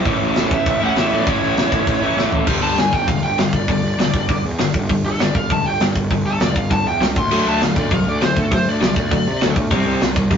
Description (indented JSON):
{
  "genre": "punk rock",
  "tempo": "199 BPM",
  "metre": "4/4",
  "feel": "straight",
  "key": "unclear",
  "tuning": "A4 = 442 Hz",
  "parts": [
    { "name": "overdriven electric guitar", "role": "riff", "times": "0.0-10.4 s", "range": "G2 to E4", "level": "-20 LUFS", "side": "left 1 dB", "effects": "none" },
    { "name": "tight metal drum kit", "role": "drums", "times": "0.0-10.4 s", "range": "crash cymbal, hi-hat, kick drum, snare drum, toms", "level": "-20 LUFS", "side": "equal", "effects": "none" },
    { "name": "fuzz picked electric bass", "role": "bass", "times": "0.1-10.4 s", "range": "E1 to C3", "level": "-22 LUFS", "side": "equal", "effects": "overdrive" },
    { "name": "smooth overdriven lead guitar", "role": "melody", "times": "0.5-9.6 s", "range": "A4 to C6", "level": "-22 LUFS", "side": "equal", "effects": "none" }
  ],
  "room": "light reverb",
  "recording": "rough rehearsal-room recording, warm saturation, nothing above 7.6 kHz",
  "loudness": "-15 LUFS",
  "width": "side -7 dB against mid",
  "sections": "0.0-2.5 A section; 2.5-10.4 B section",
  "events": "drum fill 2.2-2.5; lead electric guitar solo 2.5-10.4",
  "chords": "0.1 A; 2.5 G5; 7.2 D; 9.7 C5"
}